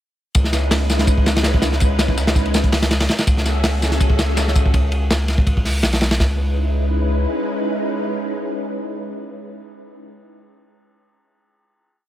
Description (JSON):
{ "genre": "drum and bass, jungle", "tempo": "164 BPM", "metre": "4/4", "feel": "swing 53% on 16ths", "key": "C# minor", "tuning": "A4 = 440 Hz", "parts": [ { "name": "soft string machine", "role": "sustained chords", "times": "0.3-9.9 s", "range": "G#3 to E5", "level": "-24 LUFS", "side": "equal", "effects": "ensemble chorus" }, { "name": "crunchy breakbeat drum kit", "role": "drums", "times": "0.3-6.3 s", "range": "hi-hat, kick drum, ride cymbal, snare drum", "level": "-18 LUFS", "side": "equal", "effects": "none" }, { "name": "dusty soul sampler-style drum kit", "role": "drums", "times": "0.3-4.6 s", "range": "hi-hat, snare drum, tambourine", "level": "-29 LUFS", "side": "left 1 dB", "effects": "high-pass filter on perc, high-pass filter on snare, high-pass filter on hats" }, { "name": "saturated sub bass", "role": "bass", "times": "0.4-7.3 s", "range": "B1 to C#2", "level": "-19 LUFS", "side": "equal", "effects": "none" } ], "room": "studio reverb", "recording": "none", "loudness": "-16 LUFS", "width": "side -12 dB against mid", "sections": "0.3-6.2 drop; 6.2-9.1 final chord", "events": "drop 0.3-6.2", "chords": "0.3 C#m7; 3.3 F#m7/C#; 6.2 C#m7" }